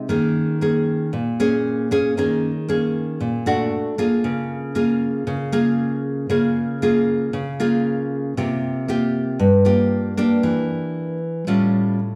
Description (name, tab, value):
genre	bossa nova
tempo	116 BPM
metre	4/4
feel	straight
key	unclear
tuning	A4 = 440 Hz
part	nylon-string guitar	solo	0.0-12.2 s	G2 to Ab4	-21 LUFS	equal	none
room	wet recital hall reverb, RT60 1.4 s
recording	recorded in a church or concert hall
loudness	-21 LUFS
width	mono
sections	0.0-12.2 A section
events	none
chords	0.1 Eb7sus4; 3.7 Bb7b13; 4.2 Bbm7/Db; 8.4 C7sus4; 10.4 Em7b5; 11.5 A7b13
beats	| 0.10 0.62 1.14 1.65 | 2.17 2.68 3.20 3.72 | 4.23 4.75 5.26 5.78 | 6.30 6.82 7.33 7.85 | 8.37 8.88 9.40 9.92 | 10.44 10.95 11.47 11.99